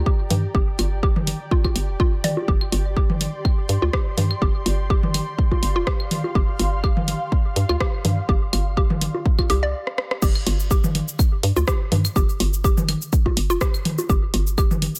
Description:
minimal techno; 124 BPM; 4/4; swing 54% on 16ths; G minor; A4 = 440 Hz
hollow knocking FM bass; bass; 0.0-14.9 s; F1 to G2; -25 LUFS; equal; sidechain pumping
ethereal airy pad; texture; 0.0-9.7 s; G4 to C6; -35 LUFS; equal; ensemble chorus, built-in reverb, sidechain pumping
mallet-like synth pluck; riff; 0.1-14.6 s; F4 to D5; -30 LUFS; equal; chorus, sidechain pumping, dub echo
electronic kick drum; drums; 0.1-14.7 s; -22 LUFS; equal
house drum kit; drums; 0.3-15.0 s; crash cymbal, hi-hat, rim click, shaker; -30 LUFS; equal
electronic toms, bongos and claves; percussion; 0.3-14.9 s; -28 LUFS; equal
little or no reverb; -21 LUFS; mono
0.0-10.2 A section; 10.2-15.0 B section
fade-in on ambient pad 0.0-10.2; stop 9.7-10.2; drum fill 9.9-10.2; drop 10.2-15.0
0.0 Gm7; 10.2 N.C.

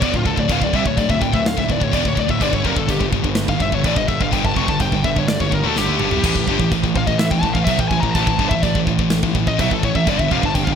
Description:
heavy metal; 125 BPM; 4/4; straight; A4 = 442 Hz
high-gain lead guitar; melody; 0.0-10.8 s; F4 to C#6; -22 LUFS; left 3 dB; distortion
heavy high-gain guitar; riff; 0.0-10.8 s; D2 to A3; -22 LUFS; left 12 dB; distortion
sludgy distorted guitar; riff; 0.0-10.8 s; D2 to A3; -23 LUFS; right 10 dB; overdrive
fuzz picked electric bass; bass; 0.0-10.8 s; D1 to D2; -24 LUFS; equal; overdrive
modern studio drum kit; drums; 0.0-10.8 s; china cymbal, crash cymbal, kick drum, snare drum, splash cymbal, toms; -22 LUFS; equal; gated reverb
light reverb; bright 1980s-style digital production; -16 LUFS; side -7 dB against mid
0.0-10.8 A section
lead electric guitar solo 0.0-10.8; drum fill 5.8-6.2
0.0 D5; 2.4 G5; 6.2 A5; 10.1 G5

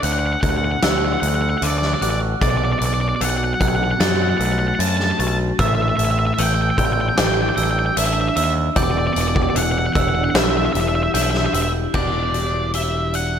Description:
post-rock; 76 BPM; 4/4; straight; E minor; A4 = 439 Hz
octave-fuzz lead guitar; melody; 0.0-13.4 s; D5 to A5; -23 LUFS; equal; distortion, analog delay
glockenspiel with hard plastic mallets; arpeggios; 0.0-13.4 s; D6 to G7; -28 LUFS; right 7 dB; analog delay
twelve-string electric guitar; arpeggios; 0.0-13.4 s; E2 to F#4; -25 LUFS; equal; phaser, analog delay
growling picked electric bass; bass; 0.0-13.4 s; E1 to F#2; -22 LUFS; equal; overdrive
huge arena drum kit; drums; 0.0-13.3 s; crash cymbal, hi-hat, kick drum, snare drum; -22 LUFS; equal
small room ambience; -16 LUFS; side -8 dB against mid
0.0-11.9 A section; 11.9-13.4 B section
0.0 D; 2.4 Bm7; 5.6 A7sus4; 8.8 Em7

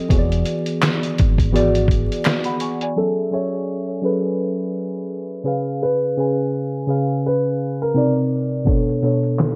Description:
lo-fi hip hop; 84 BPM; 4/4; swing 58% on 16ths; F# minor; A4 = 440 Hz
muted felt-like synth keys; accompaniment; 0.0-9.6 s; B2 to C#6; -22 LUFS; equal; chorus
deep dub fingered electric bass; bass; 0.1-2.1 s; E1 to G#1; -23 LUFS; equal
lo-fi sampler-style drum kit; drums; 0.1-3.0, 8.7-9.6 s; handclaps, hi-hat, kick drum, snare drum; -21 LUFS; equal
finger snap; percussion; 0.8-2.4 s; barely audible
warm upright piano; melody; 3.0-8.1 s; A4 to C#5; -26 LUFS; equal; analog delay
moderate spring reverb, RT60 1.6 s; vinyl crackle, low-pass filter; -20 LUFS; mono
0.0-3.0 A section; 3.0-9.6 B section
filter sweep 3.0-9.6
0.1 E9; 3.0 F#m9; 5.5 C#7; 8.0 Cm9; 8.7 Bm9

